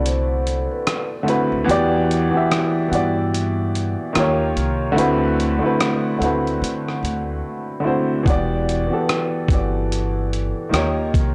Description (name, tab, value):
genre	lo-fi hip hop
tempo	73 BPM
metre	4/4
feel	swing 60% on 16ths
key	E minor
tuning	A4 = 440 Hz
part	vibraphone with soft mallets	melody	0.0-1.1, 8.3-11.1 s	B4 to D#5	-30 LUFS	equal	low-pass filter
part	warm upright piano	accompaniment	0.0-11.3 s	D3 to E5	-22 LUFS	equal	low-pass filter
part	upright bass	bass	0.0-11.3 s	E1 to D3	-27 LUFS	equal	transformer saturation
part	dusty soul sampler-style drum kit	drums	0.1-11.3 s	hi-hat, kick drum, rim click	-25 LUFS	equal	none
room	light reverb, small room ambience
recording	dry, gritty hardware recording, cassette tape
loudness	-20 LUFS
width	mono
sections	0.0-11.3 A section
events	break 0.0-8.3; silent gap 7.4-8.3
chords	0.0 D13; 1.7 Em7; 4.1 D#9; 5.0 D13; 8.3 Em7; 10.7 D#9